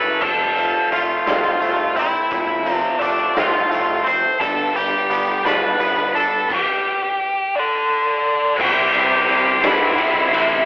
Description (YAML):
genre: quiet-loud alternative rock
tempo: 57 BPM (dotted quarters)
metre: 6/8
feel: straight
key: unclear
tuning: A4 = 438 Hz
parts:
  - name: octave-fuzz lead guitar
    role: melody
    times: 0.0-10.7 s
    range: D4 to C6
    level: -18 LUFS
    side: equal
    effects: distortion
  - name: twangy electric guitar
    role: arpeggios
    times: 0.0-6.5 s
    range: F2 to A4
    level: -23 LUFS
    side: right 1 dB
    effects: none
  - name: tight distorted guitar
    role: riff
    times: 0.0-0.2, 8.6-10.7 s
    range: A2 to C5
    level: -20 LUFS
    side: left 1 dB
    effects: distortion
  - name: fuzz picked electric bass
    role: bass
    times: 0.0-10.6 s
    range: F1 to G2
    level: -26 LUFS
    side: equal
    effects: overdrive
  - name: raw garage drum kit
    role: drums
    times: 0.2-10.5 s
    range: crash cymbal, hi-hat, kick drum, ride cymbal, snare drum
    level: -22 LUFS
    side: equal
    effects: none
  - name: thick fuzz guitar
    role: riff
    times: 4.4-10.7 s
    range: G2 to C5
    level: -25 LUFS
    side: right 1 dB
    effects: distortion
room: moderate large studio reverb, RT60 1.5 s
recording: band playing live in one room, telephone sound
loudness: -15 LUFS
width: side -25 dB against mid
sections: 0.2-8.6 A section; 8.6-10.7 B section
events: none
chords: 0.2 F; 4.4 G; 8.6 C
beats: | 0.22 1.27 | 2.31 3.36 | 4.41 5.45 | 6.50 7.54 | 8.59 9.63